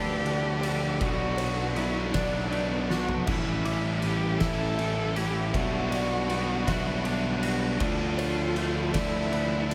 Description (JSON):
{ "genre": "post-rock", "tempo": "53 BPM (dotted quarters)", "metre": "6/8", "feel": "straight", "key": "G lydian", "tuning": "A4 = 439 Hz", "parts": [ { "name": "dark cello", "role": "melody", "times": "0.0-9.7 s", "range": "D4 to A4", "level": "-35 LUFS", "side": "equal", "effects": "tape echo" }, { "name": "bright studio string section", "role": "sustained chords", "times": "0.0-9.7 s", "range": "G3 to B5", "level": "-45 LUFS", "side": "equal", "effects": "none" }, { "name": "felt-muted upright piano", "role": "arpeggios", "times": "0.0-9.7 s", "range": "C#5 to D6", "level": "-40 LUFS", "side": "equal", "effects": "tape echo" }, { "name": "twangy electric guitar", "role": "arpeggios", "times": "0.0-9.7 s", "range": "A2 to A4", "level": "-41 LUFS", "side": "equal", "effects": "none" }, { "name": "crunchy overdriven guitar", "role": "riff", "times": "0.0-9.7 s", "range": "A2 to E4", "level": "-37 LUFS", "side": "equal", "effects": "lush chorus" }, { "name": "sludgy distorted guitar", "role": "riff", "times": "0.0-9.7 s", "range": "A2 to E4", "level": "-36 LUFS", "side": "equal", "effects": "overdrive" }, { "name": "fuzz picked electric bass", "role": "bass", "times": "0.0-9.7 s", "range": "A1 to D2", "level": "-33 LUFS", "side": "equal", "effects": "overdrive" }, { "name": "oversized low-tuned drum kit", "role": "drums", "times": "0.3-9.7 s", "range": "crash cymbal, kick drum, ride cymbal, snare drum, toms", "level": "-35 LUFS", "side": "equal", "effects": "none" } ], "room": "wet church reverb, RT60 2.8 s", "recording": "dreamy mix soaked in reverb", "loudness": "-28 LUFS", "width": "mono", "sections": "0.0-9.7 A section", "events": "drum fill 2.9-3.3", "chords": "0.0 Dm6; 1.0 Bm7; 3.3 A7sus4; 5.5 Gmaj7/B; 7.8 Dm6" }